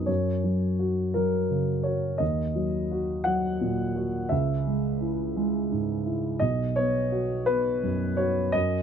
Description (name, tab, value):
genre	neoclassical minimalist piano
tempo	57 BPM (dotted quarters)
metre	6/8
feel	rubato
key	B major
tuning	A4 = 440 Hz
part	dark grand piano	solo	0.0-8.8 s	B1 to F#5	-24 LUFS	equal	none
room	little or no reverb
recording	close, detailed microphones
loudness	-24 LUFS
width	side -8 dB against mid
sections	0.0-8.8 A section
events	none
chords	0.1 F#; 2.2 D#m; 4.3 C#m; 6.4 B5